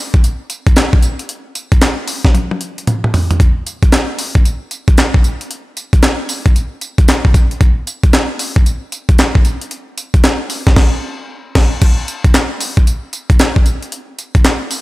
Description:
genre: R&B.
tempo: 114 BPM.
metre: 4/4.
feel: swing 63% on 16ths.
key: none.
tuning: none.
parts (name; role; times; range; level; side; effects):
breakbeat sampler-style drum kit; drums; 0.1-14.8 s; crash cymbal, handclaps, hi-hat, kick drum, snare drum, tambourine, toms; -11 LUFS; equal; none.
room: light reverb.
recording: none.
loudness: -11 LUFS.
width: side -19 dB against mid.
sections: 0.0-11.8 A section; 11.8-14.8 A section.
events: drum fill 2.3-3.4; band accent 10.8-11.8.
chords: none.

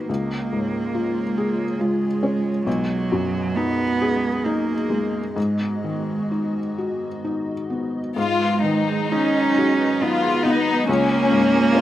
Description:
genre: neoclassical piano and strings.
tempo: 61-70 BPM.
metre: 3/4.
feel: rubato.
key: G# dorian.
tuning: A4 = 440 Hz.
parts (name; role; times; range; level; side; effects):
warm cello; second line; 0.0-11.8 s; F#3 to C#4; -23 LUFS; right 4 dB; none.
felt-muted upright piano; accompaniment; 0.0-11.8 s; B1 to B4; -24 LUFS; left 2 dB; none.
hollow soft pad; sustained chords; 0.0-11.8 s; F#3 to E#5; -35 LUFS; right 1 dB; ensemble chorus.
warm chamber violin section; melody; 8.2-11.8 s; C#4 to E#4; -21 LUFS; left 4 dB; none.
marimba with medium mallets; arpeggios; 8.2-11.8 s; C#4 to D#5; -30 LUFS; right 5 dB; none.
room: light reverb.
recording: recorded outdoors, with no room sound.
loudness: -19 LUFS.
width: side -13 dB against mid.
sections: 0.0-8.2 A section; 8.2-11.8 A section.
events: none.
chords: 0.1 C#; 2.7 G#m7/B; 5.4 G#m7; 10.9 C#.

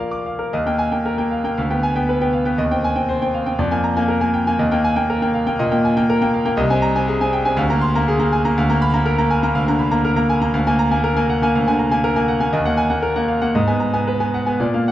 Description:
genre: classical, virtuoso piano study.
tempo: 120 BPM.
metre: 4/4.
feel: rubato.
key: Eb major.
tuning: A4 = 440 Hz.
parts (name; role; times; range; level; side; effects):
bright grand piano; solo; 0.0-14.9 s; C2 to D6; -16 LUFS; equal; none.
room: wet recital hall reverb, RT60 1.8 s.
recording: dark, warm production, nothing above 11.0 kHz.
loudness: -16 LUFS.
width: side -13 dB against mid.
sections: 0.5-14.9 A section.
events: none.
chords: 0.0 Bb; 0.5 Eb; 1.6 G7/D; 2.6 Cm/Eb; 3.6 Bb7/F; 4.6 Eb; 6.6 Ab/C; 7.6 Bb7/D; 8.6 Bb/D; 10.5 Bb7/D; 12.5 Ebm; 13.5 Abm.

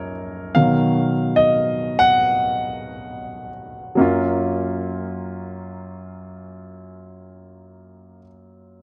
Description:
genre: pop.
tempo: 67-74 BPM.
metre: 4/4.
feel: straight.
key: F# major.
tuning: A4 = 440 Hz.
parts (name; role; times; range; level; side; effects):
clear concert grand piano; accompaniment; 0.0-8.8 s; F#2 to F#5; -22 LUFS; equal; none.
room: moderate lush hall reverb, RT60 2.8 s.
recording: dark, warm production.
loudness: -19 LUFS.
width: mono.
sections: 0.0-4.0 A section; 4.0-7.6 B section.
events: slowing down 0.0-4.0; grand piano solo 0.0-4.0.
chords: 0.0 F#maj7; 0.5 B; 4.0 F#maj7.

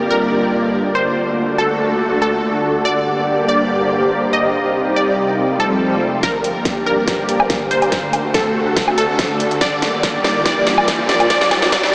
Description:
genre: heavy wobble dubstep.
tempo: 142 BPM.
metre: 4/4.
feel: half-time.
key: G minor.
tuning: A4 = 440 Hz.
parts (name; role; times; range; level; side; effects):
wide unison pluck; melody; 0.0-11.9 s; A4 to Eb5; -19 LUFS; equal; phaser, tape echo.
supersaw pad; sustained chords; 0.0-11.9 s; C2 to D5; -19 LUFS; equal; ensemble chorus, sidechain pumping.
ethereal airy pad; texture; 0.0-11.9 s; F3 to Bb5; -22 LUFS; equal; ensemble chorus, built-in reverb, sidechain pumping.
swell and riser; sound effects; 5.5-11.9 s; none; -25 LUFS; equal; none.
dubstep drum kit; drums; 6.2-11.9 s; hi-hat, snare drum, woodblock; -19 LUFS; equal; high-pass filter on snare, studio reverb, high-pass filter on hats, high-pass filter on perc.
electronic kick drum; drums; 6.2-11.8 s; none; -25 LUFS; equal; studio reverb.
room: wet huge ambient reverb, RT60 8.6 s.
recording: dreamy mix soaked in reverb, high-pass filter, small speaker sound.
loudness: -14 LUFS.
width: side -31 dB against mid.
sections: 0.0-6.2 A section; 6.2-11.9 B section.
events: swell 5.5-6.2; build-up 6.2-11.9; drum fill 6.2-11.9.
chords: 0.0 Gm; 1.2 D; 2.9 Gm; 4.5 Cm; 5.4 F; 6.2 Gm; 7.9 D; 9.6 Gm; 11.3 Cm.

